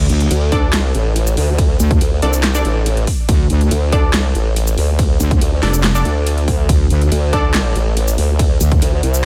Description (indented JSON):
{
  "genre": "heavy wobble dubstep",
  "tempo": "141 BPM",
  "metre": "4/4",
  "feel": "half-time",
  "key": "D minor",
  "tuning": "A4 = 440 Hz",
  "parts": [
    { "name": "wobble bass", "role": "bass", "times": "0.0-8.8 s", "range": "F1 to D2", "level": "-16 LUFS", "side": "equal", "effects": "chorus, overdrive" },
    { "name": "dubstep drum kit", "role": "drums", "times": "0.1-9.2 s", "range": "handclaps, hi-hat, ride cymbal, shaker, snare drum", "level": "-25 LUFS", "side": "equal", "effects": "none" },
    { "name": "formant-sweep wobble bass", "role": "bass", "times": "0.3-9.2 s", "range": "A1 to D2", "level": "-18 LUFS", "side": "equal", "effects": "chorus, overdrive" },
    { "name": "orchestra-hit-like synth stab", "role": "stabs", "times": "0.5-7.4 s", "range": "D4 to D5", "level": "-26 LUFS", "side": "equal", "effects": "built-in reverb, dub echo" },
    { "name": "electronic kick drum", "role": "drums", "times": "0.5-8.8 s", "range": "none", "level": "-18 LUFS", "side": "equal", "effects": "none" }
  ],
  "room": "little or no reverb",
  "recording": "none",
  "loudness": "-15 LUFS",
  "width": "mono",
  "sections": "0.0-9.2 A section",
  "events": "none",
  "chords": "0.0 D5",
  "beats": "0.31 0.73 1.16 | 1.58 2.01 2.44 2.86 | 3.29 3.71 4.14 4.56 | 4.99 5.41 5.84 6.27 | 6.69 7.12 7.54 7.97 | 8.39 8.82 9.24"
}